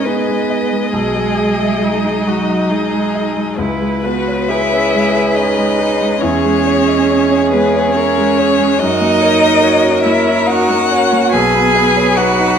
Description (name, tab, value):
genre	classical, slow romantic movement for piano quintet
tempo	69 BPM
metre	3/4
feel	rubato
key	unclear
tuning	A4 = 440 Hz
part	warm violin	melody	0.0-12.6 s	F#4 to G#5	-18 LUFS	left 7 dB	none
part	rich cello	second line	0.0-12.6 s	F#3 to G#4	-16 LUFS	right 6 dB	none
part	rich violin	second line	0.0-12.6 s	G#4 to D#5	-22 LUFS	left 5 dB	none
part	bright concert grand piano	accompaniment	0.0-12.6 s	B1 to E5	-17 LUFS	left 1 dB	none
part	warm viola	accompaniment	0.0-12.6 s	B3 to A#4	-21 LUFS	right 3 dB	none
room	wet recital hall reverb, RT60 1.8 s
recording	none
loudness	-11 LUFS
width	side -7 dB against mid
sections	0.0-12.6 A section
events	none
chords	0.0 G#m; 0.9 G#m/B; 3.6 C#m7; 6.2 C#m/E; 8.8 F#; 11.3 B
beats	0.06 | 0.94 1.82 2.70 | 3.58 4.50 5.35 | 6.21 7.09 7.95 | 8.79 9.62 10.47 | 11.33 12.17